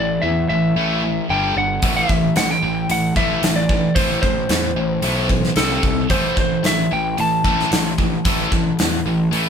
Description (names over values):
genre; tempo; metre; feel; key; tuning
hard rock; 112 BPM; 4/4; straight; A minor; A4 = 441 Hz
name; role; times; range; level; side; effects
lightly driven lead guitar; melody; 0.0-9.5 s; A4 to A5; -22 LUFS; left 2 dB; none
high-gain distorted guitar; riff; 0.0-9.5 s; G2 to C4; -24 LUFS; left 8 dB; distortion
tight distorted guitar; riff; 0.0-9.5 s; G2 to C4; -23 LUFS; right 7 dB; distortion
fuzz picked electric bass; bass; 0.0-9.5 s; G1 to E2; -24 LUFS; right 1 dB; overdrive
gated 80s drum kit; drums; 1.8-9.4 s; hi-hat, kick drum, snare drum; -20 LUFS; equal; none
room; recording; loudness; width
light reverb; band playing live in one room; -16 LUFS; side -7 dB against mid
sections
0.0-9.5 A section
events
none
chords
0.0 A5; 1.3 G5; 1.8 Am; 5.6 C5; 6.1 A5